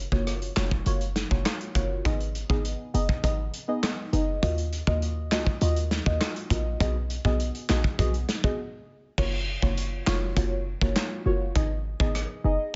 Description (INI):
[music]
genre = dancehall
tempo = 101 BPM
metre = 4/4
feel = straight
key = F# major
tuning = A4 = 438 Hz
[part]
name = short 808-style bass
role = bass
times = 0.0-12.6 s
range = E#1 to D#2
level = -30 LUFS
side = equal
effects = none
[part]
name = deep mellow chord stab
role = accompaniment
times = 0.1-12.7 s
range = A#3 to D#5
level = -34 LUFS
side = equal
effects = chorus, phaser, sidechain pumping
[part]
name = modern studio drum kit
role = drums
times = 0.1-12.3 s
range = crash cymbal, handclaps, hi-hat, kick drum, rim click, snare drum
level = -30 LUFS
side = equal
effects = none
[sound]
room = small room ambience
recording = nothing above 7.7 kHz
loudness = -27 LUFS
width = mono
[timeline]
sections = 0.0-9.2 A section; 9.2-12.8 B section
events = break 8.6-9.2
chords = 0.0 F#maj7; 2.1 G#m; 4.4 D#madd9; 6.8 B6; 9.2 F#maj7; 11.6 G#m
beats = 0.27 0.86 1.46 | 2.05 2.65 3.24 3.83 | 4.43 5.02 5.62 6.21 | 6.80 7.40 7.99 8.59 | 9.18 9.77 10.37 10.96 | 11.56 12.15